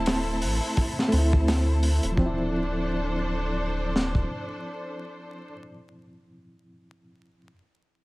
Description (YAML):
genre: trip hop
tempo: 85 BPM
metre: 4/4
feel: swing 58% on 16ths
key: D minor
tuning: A4 = 440 Hz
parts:
  - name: overdriven reed electric piano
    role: accompaniment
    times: 0.0-7.5 s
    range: F3 to E4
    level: -30 LUFS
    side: equal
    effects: fast tremolo, harmonic tremolo, vintage 12-bit sampler grit, low-pass filter, tape echo
  - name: rich studio string section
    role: sustained chords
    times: 0.0-5.5 s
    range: D4 to A5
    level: -33 LUFS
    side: left 1 dB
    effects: none
  - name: soft dub sub bass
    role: bass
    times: 0.0-4.3 s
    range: D1 to D2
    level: -26 LUFS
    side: equal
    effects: none
  - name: crunchy breakbeat drum kit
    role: drums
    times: 0.1-4.3 s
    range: hi-hat, kick drum, snare drum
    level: -27 LUFS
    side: equal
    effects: none
room: small room ambience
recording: vinyl crackle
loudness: -23 LUFS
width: side -21 dB against mid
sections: 0.0-2.2 A section; 2.2-5.0 B section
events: filter sweep on reed electric piano 0.0-2.2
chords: 0.0 Am/D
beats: 0.07 0.77 1.48 | 2.18 2.89 3.60 4.30